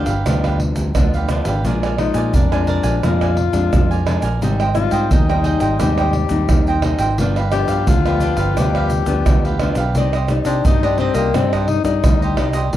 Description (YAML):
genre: samba and choro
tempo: 87 BPM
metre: 4/4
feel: straight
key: C minor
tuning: A4 = 439 Hz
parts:
  - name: cavaquinho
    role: accompaniment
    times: 0.0-12.7 s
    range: D4 to Ab5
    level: -24 LUFS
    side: right 5 dB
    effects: none
  - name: nylon-string guitar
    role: accompaniment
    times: 0.0-12.8 s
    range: F2 to D5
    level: -22 LUFS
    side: left 4 dB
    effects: none
  - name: fingered electric bass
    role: bass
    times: 0.1-12.8 s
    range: G1 to C3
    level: -20 LUFS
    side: right 1 dB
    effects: none
  - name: tube shaker, surdo, pandeiro and tamborim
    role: percussion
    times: 0.1-12.8 s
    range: none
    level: -19 LUFS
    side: right 2 dB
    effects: none
  - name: breathy tenor saxophone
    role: second line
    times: 2.0-12.5 s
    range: Bb3 to G4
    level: -22 LUFS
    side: left 8 dB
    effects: none
room: light reverb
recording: dry, close 1970s-style studio recording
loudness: -14 LUFS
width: side -12 dB against mid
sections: 0.0-12.7 A section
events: tenor saxophone solo 0.0-12.7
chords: 0.0 G7; 1.7 Bb7; 4.4 Abmaj7; 7.2 G7; 10.0 Cmadd9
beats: 0.27 0.96 | 1.66 2.35 3.04 3.73 | 4.42 5.12 5.81 6.50 | 7.19 7.88 8.58 9.27 | 9.96 10.65 11.35 12.04 | 12.73